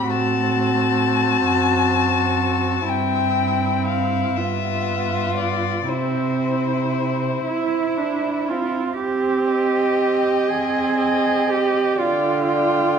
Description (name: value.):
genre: classical, slow romantic movement for string quartet.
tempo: 38-44 BPM (dotted quarters).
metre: 6/8.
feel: rubato.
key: C major, C minor from 9.0 s.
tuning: A4 = 439 Hz.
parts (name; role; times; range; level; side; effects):
muted violin; melody; 0.0-13.0 s; C5 to B5; -24 LUFS; left 9 dB; none.
muted violin; second line; 0.0-13.0 s; E4 to Eb5; -26 LUFS; left 2 dB; none.
muted viola; accompaniment; 0.0-13.0 s; D3 to E4; -24 LUFS; right 3 dB; none.
muted cello; bass; 0.0-13.0 s; F#2 to Ab4; -22 LUFS; right 5 dB; none.
room: wet recital hall reverb, RT60 1.5 s.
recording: minimal, uncompressed stereo recording.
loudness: -18 LUFS.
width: side -7 dB against mid.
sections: 0.0-9.0 A section; 9.0-13.0 B section.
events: none.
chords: 0.1 F#dim; 2.9 C/G; 4.4 G7; 5.9 C; 9.0 Cm; 12.0 G5/D.